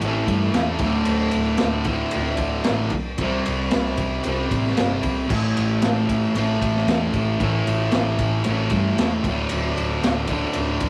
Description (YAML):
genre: garage rock duo or trio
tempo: 114 BPM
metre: 4/4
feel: straight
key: unclear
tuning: A4 = 440 Hz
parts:
  - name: fuzz guitar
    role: riff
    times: 0.0-10.9 s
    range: D2 to C4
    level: -25 LUFS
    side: equal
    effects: distortion
  - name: hollow-body short-scale picked electric bass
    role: bass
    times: 0.0-10.9 s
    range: D1 to G2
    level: -28 LUFS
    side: equal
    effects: none
  - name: crunchy breakbeat drum kit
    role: drums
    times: 0.0-10.9 s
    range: crash cymbal, kick drum, ride cymbal, snare drum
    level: -27 LUFS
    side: equal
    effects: none
room: light reverb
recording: rough rehearsal-room recording, warm saturation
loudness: -22 LUFS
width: mono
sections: 0.0-10.9 A section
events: none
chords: 0.0 A5; 0.8 D5; 3.2 C5; 5.3 A5; 9.2 D5